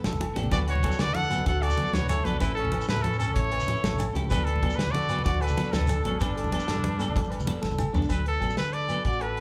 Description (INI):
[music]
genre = highlife guitar band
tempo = 127 BPM (dotted quarters)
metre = 12/8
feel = straight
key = D major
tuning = A4 = 440 Hz
[part]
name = electric guitar at the edge of break-up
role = arpeggios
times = 0.0-9.4 s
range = D4 to B4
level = -37 LUFS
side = equal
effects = spring reverb
[part]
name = fingered electric bass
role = bass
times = 0.0-9.4 s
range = G1 to D3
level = -32 LUFS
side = equal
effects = none
[part]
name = warm soul drum kit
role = drums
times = 0.0-9.4 s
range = hi-hat, kick drum, snare drum, toms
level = -34 LUFS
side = equal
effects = none
[part]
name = congas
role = percussion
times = 0.0-8.1 s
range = none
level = -34 LUFS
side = equal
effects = none
[part]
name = agogo bells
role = percussion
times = 0.2-9.4 s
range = none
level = -44 LUFS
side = equal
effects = none
[part]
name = semi-hollow electric guitar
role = accompaniment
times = 0.3-9.4 s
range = F#3 to A4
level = -38 LUFS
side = equal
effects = harmonic tremolo
[part]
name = bright trumpet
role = melody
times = 0.5-9.4 s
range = D4 to F#5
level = -33 LUFS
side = equal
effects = none
[part]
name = warm trumpet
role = second line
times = 0.5-7.8 s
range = G3 to A4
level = -42 LUFS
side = equal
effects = none
[part]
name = shekere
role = percussion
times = 0.5-9.2 s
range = none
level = -41 LUFS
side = equal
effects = none
[sound]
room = moderate large studio reverb, RT60 1.1 s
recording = band playing live in one room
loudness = -27 LUFS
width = mono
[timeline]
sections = 0.0-8.1 A section; 8.1-9.4 B section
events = drum fill 7.6-8.1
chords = 0.0 Gadd9; 0.5 D6; 2.4 A; 4.3 D6; 6.2 Gadd9; 8.1 D6